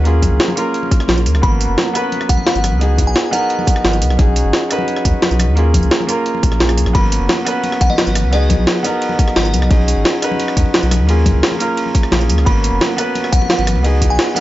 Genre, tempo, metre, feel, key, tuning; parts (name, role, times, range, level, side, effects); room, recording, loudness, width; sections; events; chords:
liquid drum and bass; 174 BPM; 4/4; straight; G# dorian; A4 = 435 Hz
dark baby grand piano; accompaniment; 0.0-14.4 s; A#3 to B4; -19 LUFS; equal; digital delay
warm sub bass; bass; 0.0-14.2 s; F#1 to D#2; -15 LUFS; equal
jungle sampler-style drum kit; drums; 0.1-14.4 s; hi-hat, ride cymbal, rim click, snare drum, tambourine; -18 LUFS; right 1 dB; overdrive, small room ambience
electronic kick drum; drums; 0.2-14.1 s; -14 LUFS; equal; small room ambience
congas; percussion; 0.2-14.4 s; -25 LUFS; left 2 dB
glassy synth bell; melody; 1.4-3.6, 6.9-9.7, 12.5-14.4 s; D#5 to B5; -24 LUFS; left 1 dB; chorus, digital delay
little or no reverb; nothing above 7.6 kHz; -12 LUFS; side -15 dB against mid
0.0-14.4 A section
0.1 D#7sus4; 1.4 G#m11; 2.8 C#7sus4; 4.2 B69; 5.6 D#7sus4; 6.9 G#m11; 8.3 C#7sus4; 9.7 B69; 11.1 D#7sus4; 12.5 G#m11; 13.8 C#7sus4